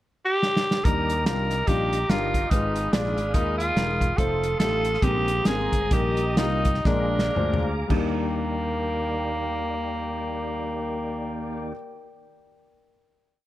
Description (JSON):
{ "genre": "uptempo gospel", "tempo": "108-144 BPM", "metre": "4/4", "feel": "swing 59% on 8ths", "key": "Eb major", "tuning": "A4 = 440 Hz", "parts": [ { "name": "breathy tenor saxophone", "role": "melody", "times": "0.3-11.7 s", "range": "Bb3 to Bb4", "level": "-26 LUFS", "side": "equal", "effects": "none" }, { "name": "warm soul drum kit", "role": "drums", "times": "0.4-8.1 s", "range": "crash cymbal, hi-hat, kick drum, snare drum, toms", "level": "-26 LUFS", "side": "equal", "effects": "none" }, { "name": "glass harmonica", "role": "sustained chords", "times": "0.8-11.7 s", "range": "Bb4 to Eb6", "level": "-39 LUFS", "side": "left 1 dB", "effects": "none" }, { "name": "tonewheel organ", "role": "sustained chords", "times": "0.8-11.7 s", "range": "Eb3 to Eb6", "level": "-34 LUFS", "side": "equal", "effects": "slow rotary speaker, chorus vibrato" }, { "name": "warm upright piano", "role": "accompaniment", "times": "0.9-11.7 s", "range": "Eb2 to D5", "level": "-31 LUFS", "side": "left 3 dB", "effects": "none" }, { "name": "fingered electric bass", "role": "bass", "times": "0.9-11.7 s", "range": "Fb1 to Eb2", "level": "-29 LUFS", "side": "equal", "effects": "none" } ], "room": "light reverb", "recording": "none", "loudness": "-22 LUFS", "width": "side -14 dB against mid", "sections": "0.0-0.8 pickup bar; 0.8-7.9 breakdown; 7.9-12.3 final chord", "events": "drum fill 0.4-0.8, 6.9-7.9; slowing down 4.2-7.9", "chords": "0.0 N.C.; 0.8 Ebmaj7; 2.5 Abm6; 4.2 F7; 5.0 Bb9sus4; 5.9 Eb/Bb; 6.9 Bb7; 7.9 Ebmaj7" }